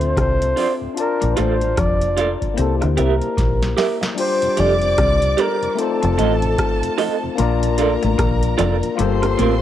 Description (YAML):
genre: lovers rock reggae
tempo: 75 BPM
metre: 4/4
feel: swing 61% on 16ths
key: F major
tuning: A4 = 440 Hz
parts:
  - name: breathy flugelhorn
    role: melody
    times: 0.0-7.0 s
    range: A4 to D5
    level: -22 LUFS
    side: equal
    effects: cassette tape, tape echo
  - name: mellow tonewheel organ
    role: accompaniment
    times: 0.0-9.5 s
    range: D2 to E4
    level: -32 LUFS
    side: right 7 dB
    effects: slow rotary speaker
  - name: overdriven tine electric piano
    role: accompaniment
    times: 0.0-9.6 s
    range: G3 to A5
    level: -23 LUFS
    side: left 9 dB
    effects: none
  - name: deep dub fingered electric bass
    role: bass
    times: 0.0-9.6 s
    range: F1 to D2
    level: -20 LUFS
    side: equal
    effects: none
  - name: booming analog drum machine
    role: drums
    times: 0.0-9.6 s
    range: crash cymbal, hi-hat, kick drum, rim click, snare drum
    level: -23 LUFS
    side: equal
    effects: cassette tape
  - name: semi-hollow electric guitar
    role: riff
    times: 0.2-9.5 s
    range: F3 to D4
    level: -27 LUFS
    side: left 8 dB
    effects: phaser
  - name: electric guitar through a small old amp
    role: stabs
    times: 0.6-9.5 s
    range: C4 to E5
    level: -22 LUFS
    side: right 8 dB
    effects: tremolo
  - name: warm studio violin section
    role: second line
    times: 4.2-9.6 s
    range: A4 to D6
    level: -27 LUFS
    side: equal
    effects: analog delay
room: digital ambience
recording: home recording on cassette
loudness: -16 LUFS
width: side -11 dB against mid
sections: 0.0-4.2 A section; 4.2-9.6 B section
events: drum fill 3.4-4.2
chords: 0.0 Dm7; 1.0 Bbmaj7; 2.6 C7; 4.2 F69; 5.8 F7; 7.4 Bbmaj7; 9.0 Gm11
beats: 0.17 | 0.97 1.77 2.57 3.38 | 4.18 4.98 5.78 6.58 | 7.38 8.18 8.98